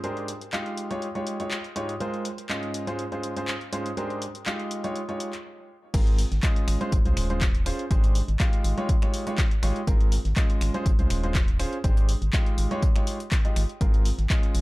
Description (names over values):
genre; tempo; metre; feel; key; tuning
piano house; 122 BPM; 4/4; swing 53% on 16ths; Ab major; A4 = 440 Hz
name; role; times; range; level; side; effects
clear baby grand piano; riff; 0.0-14.6 s; Ab2 to F5; -30 LUFS; right 1 dB; sidechain pumping, tape echo
breakbeat sampler-style drum kit; drums; 0.0-14.6 s; hi-hat, snare drum, tambourine; -45 LUFS; left 2 dB; none
punchy analog drum machine; drums; 0.0-14.6 s; crash cymbal, finger snaps, handclaps, hi-hat; -33 LUFS; left 1 dB; none
organ-like FM bass; bass; 5.9-14.6 s; Eb1 to C2; -25 LUFS; equal; sidechain pumping
electronic kick drum; drums; 5.9-14.4 s; none; -23 LUFS; equal; none
room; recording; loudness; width
digital ambience; dark, warm production; -23 LUFS; side -20 dB against mid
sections
0.0-5.9 A section; 5.9-14.6 B section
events
stop 5.4-5.9; drop 5.9-14.6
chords
0.0 Bb13/Ab; 0.8 Eb9/Ab; 2.0 Ab69; 2.7 Dbmaj7/Ab; 4.0 Bb13/Ab; 4.7 Eb9/Ab; 5.9 Ab69; 6.7 Dbmaj7; 7.9 Fm13/Ab; 8.6 Eb9/Ab; 9.9 Ab69; 10.6 Dbmaj7; 11.8 Fm13/Ab; 12.6 Eb9/Ab; 13.8 Ab69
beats
| 0.04 0.53 1.02 1.51 | 2.00 2.50 2.99 3.48 | 3.97 4.46 4.96 5.45 | 5.94 6.43 6.92 7.42 | 7.91 8.40 8.89 9.38 | 9.87 10.37 10.86 11.35 | 11.84 12.33 12.82 13.32 | 13.81 14.30